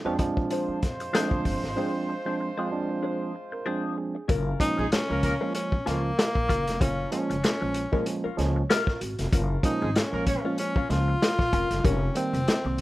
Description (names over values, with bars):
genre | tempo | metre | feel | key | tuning
funk | 95 BPM | 4/4 | swing 56% on 16ths | unclear | A4 = 440 Hz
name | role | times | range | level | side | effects
mellow tine electric piano | stabs | 0.0-12.8 s | Eb3 to D5 | -30 LUFS | right 3 dB | overdrive
clean electric guitar | accompaniment | 0.1-12.7 s | Db4 to C5 | -32 LUFS | left 6 dB | wah, wide subtle chorus
upright bass | bass | 0.1-12.8 s | F1 to F2 | -30 LUFS | equal | none
vintage drum kit | drums | 0.2-12.8 s | hi-hat, kick drum, snare drum | -26 LUFS | equal | none
mellow horn section | second line | 0.5-5.3, 9.8-10.4 s | Ab3 to Db5 | -34 LUFS | right 1 dB | none
breathy tenor saxophone | melody | 4.6-12.8 s | Bb3 to F4 | -29 LUFS | left 1 dB | none
room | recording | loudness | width
small room reverb | rough home demo mix | -24 LUFS | side -17 dB against mid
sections
0.0-4.3 A section; 4.3-12.8 B section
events
break 1.8-4.3; tine electric piano fill 2.4-4.3, 8.1-9.3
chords
0.0 Bb9 (rootless); 4.3 Gbmaj7; 11.8 F9sus4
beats
0.51 1.14 | 1.77 2.40 3.03 3.66 | 4.29 4.92 5.55 6.18 | 6.81 7.43 8.06 8.69 | 9.32 9.95 10.58 11.21 | 11.84 12.47